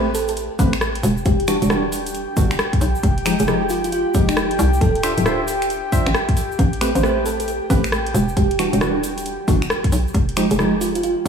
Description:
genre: UK garage, two-step garage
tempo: 135 BPM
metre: 4/4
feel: swing 64% on 16ths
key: A minor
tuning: A4 = 441 Hz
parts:
  - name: warm analog pad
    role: sustained chords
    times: 0.0-11.3 s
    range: G4 to G5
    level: -28 LUFS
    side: left 1 dB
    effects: chorus, sidechain pumping
  - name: percussive organ stab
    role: stabs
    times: 0.0-11.3 s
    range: E3 to E5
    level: -23 LUFS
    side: right 1 dB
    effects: chorus, analog delay
  - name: hollow knocking FM bass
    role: bass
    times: 0.0-11.3 s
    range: D1 to C2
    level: -22 LUFS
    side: equal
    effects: none
  - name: bell-like FM electric piano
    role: melody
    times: 0.1-11.2 s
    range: D4 to C5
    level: -25 LUFS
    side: right 2 dB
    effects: chorus, tremolo, analog delay
  - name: garage drum kit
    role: drums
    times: 0.1-11.3 s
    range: finger snaps, hi-hat, rim click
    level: -25 LUFS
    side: equal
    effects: none
  - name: tube shaker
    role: percussion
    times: 0.1-11.3 s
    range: none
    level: -35 LUFS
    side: right 3 dB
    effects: none
  - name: electronic kick drum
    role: drums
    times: 0.6-11.3 s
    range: none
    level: -19 LUFS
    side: equal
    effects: none
room: moderate lush hall reverb, RT60 1.9 s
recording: dreamy mix soaked in reverb, studio ambience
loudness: -16 LUFS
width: side -7 dB against mid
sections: 0.0-11.3 A section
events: none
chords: 0.0 Am9; 1.3 Em9; 3.0 Fm9; 4.8 Dm9; 6.6 Am9; 8.4 Em9; 10.1 Fm9

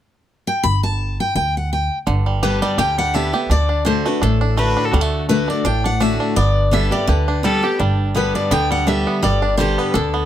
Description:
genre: bluegrass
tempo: 168 BPM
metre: 4/4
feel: swing 55% on 8ths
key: G major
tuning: A4 = 440 Hz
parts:
  - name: picked steel-string acoustic guitar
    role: melody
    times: 0.5-10.3 s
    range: A4 to B5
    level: -21 LUFS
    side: left 2 dB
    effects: none
  - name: upright bass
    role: bass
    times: 0.6-10.3 s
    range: G1 to D2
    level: -20 LUFS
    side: right 1 dB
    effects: none
  - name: bluegrass banjo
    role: melody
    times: 2.1-10.3 s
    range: D3 to G4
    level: -24 LUFS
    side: right 5 dB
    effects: none
  - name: picked steel-string acoustic guitar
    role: accompaniment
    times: 2.1-10.3 s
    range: G2 to G4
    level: -21 LUFS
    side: left 2 dB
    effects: none
  - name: warm fiddle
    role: second line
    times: 4.6-5.2, 7.4-8.1 s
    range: D4 to B4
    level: -22 LUFS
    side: left 2 dB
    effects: none
room: light reverb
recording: close, detailed microphones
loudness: -16 LUFS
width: side -11 dB against mid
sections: 0.6-2.1 A section; 2.1-10.3 B section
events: none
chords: 0.0 N.C.; 0.6 G5; 2.1 G; 3.5 D; 6.4 G

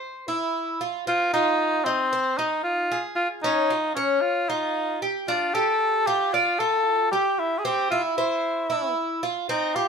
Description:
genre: latin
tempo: 114 BPM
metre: 4/4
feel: straight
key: unclear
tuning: A4 = 440 Hz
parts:
  - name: Cuban tres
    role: arpeggios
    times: 0.0-9.9 s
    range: C4 to D5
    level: -26 LUFS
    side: right 1 dB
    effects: none
  - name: mellow cor anglais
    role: melody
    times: 1.1-9.9 s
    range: C4 to A4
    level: -22 LUFS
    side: equal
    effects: none
room: moderate studio reverb, RT60 0.7 s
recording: minimal, uncompressed stereo recording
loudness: -22 LUFS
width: side -6 dB against mid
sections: 0.0-9.5 A section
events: none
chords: 0.0 C; 1.1 Fm7; 3.2 Db; 5.3 G5; 7.4 C

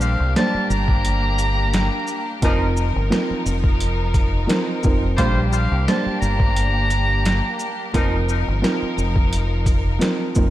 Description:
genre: hip hop, boom-bap hip-hop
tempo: 87 BPM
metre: 4/4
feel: swing 55% on 16ths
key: Bb major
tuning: A4 = 438 Hz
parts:
  - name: trumpet with metal mute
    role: melody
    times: 0.0-7.9 s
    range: F5 to Bb5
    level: -25 LUFS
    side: equal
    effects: high-pass filter, low-pass filter, ping-pong delay
  - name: dark upright piano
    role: accompaniment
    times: 0.0-10.5 s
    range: Bb2 to C5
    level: -25 LUFS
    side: right 2 dB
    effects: high-pass filter, low-pass filter
  - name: clear studio string section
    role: sustained chords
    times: 0.0-10.5 s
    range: F3 to Bb4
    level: -28 LUFS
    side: left 1 dB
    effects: high-pass filter, low-pass filter
  - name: deep dub fingered electric bass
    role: bass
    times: 0.0-10.5 s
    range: F1 to C2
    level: -21 LUFS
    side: equal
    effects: none
  - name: boom bap sampler-style drum kit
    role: drums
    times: 0.0-10.5 s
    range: hi-hat, kick drum, shaker, snare drum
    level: -21 LUFS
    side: equal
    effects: none
  - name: warm horn section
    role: stabs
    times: 2.4-8.2 s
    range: F3 to C5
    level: -28 LUFS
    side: left 2 dB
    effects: high-pass filter, low-pass filter, ping-pong delay
room: light reverb, small room ambience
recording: vinyl crackle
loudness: -17 LUFS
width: side -14 dB against mid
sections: 0.0-10.5 A section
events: none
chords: 0.0 Bb69; 2.4 F7sus4; 5.2 Bb69; 7.9 F7sus4

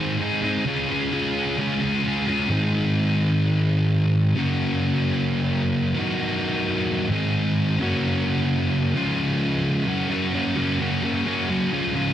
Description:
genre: rock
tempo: 130 BPM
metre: 4/4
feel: straight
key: Gb lydian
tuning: A4 = 442 Hz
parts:
  - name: sludgy distorted guitar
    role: solo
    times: 0.0-12.1 s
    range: Gb2 to Ab4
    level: -20 LUFS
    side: equal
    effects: overdrive, cassette tape
room: light reverb, digital ambience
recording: home recording on cassette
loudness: -20 LUFS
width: side -11 dB against mid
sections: 0.0-2.5 A section; 2.5-9.9 B section; 9.9-12.1 C section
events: none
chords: 0.0 Ab5; 0.7 Db; 2.5 Ab; 4.3 Gb; 6.0 Ebm/Gb; 7.1 Ab; 7.8 Gb; 9.0 Db; 9.9 Gb

